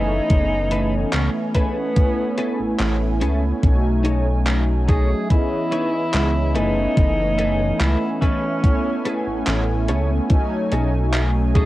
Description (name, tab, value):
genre	vaporwave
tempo	72 BPM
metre	4/4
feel	straight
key	F# dorian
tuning	A4 = 441 Hz
part	mellow tenor saxophone	melody	0.0-11.7 s	B3 to G#4	-25 LUFS	equal	tape echo
part	mellow synth brass	accompaniment	0.0-11.7 s	E3 to G#5	-23 LUFS	right 1 dB	wide subtle chorus, cassette tape
part	twelve-string electric guitar	riff	0.0-11.7 s	C#4 to C#5	-29 LUFS	left 2 dB	ensemble chorus, analog delay
part	chorused synth bass	bass	0.0-11.7 s	F#1 to C#2	-21 LUFS	equal	tube saturation
part	electronic kick drum	drums	0.3-11.7 s	none	-17 LUFS	equal	overdrive
part	gated 80s digital drum machine	drums	0.3-11.7 s	handclaps, hi-hat	-27 LUFS	equal	gated reverb, overdrive
room	digital ambience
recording	worn, warbling old tape, cassette tape, warbly pitch drift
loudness	-17 LUFS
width	side -16 dB against mid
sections	0.0-11.7 A section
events	none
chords	0.0 F#m11; 2.0 Amaj9; 3.6 B13; 5.3 C#m9; 6.6 F#m11; 8.6 Amaj9; 10.3 B13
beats	0.30 1.14 | 1.97 2.80 3.63 4.47 | 5.30 6.13 6.97 7.80 | 8.63 9.47 10.30 11.13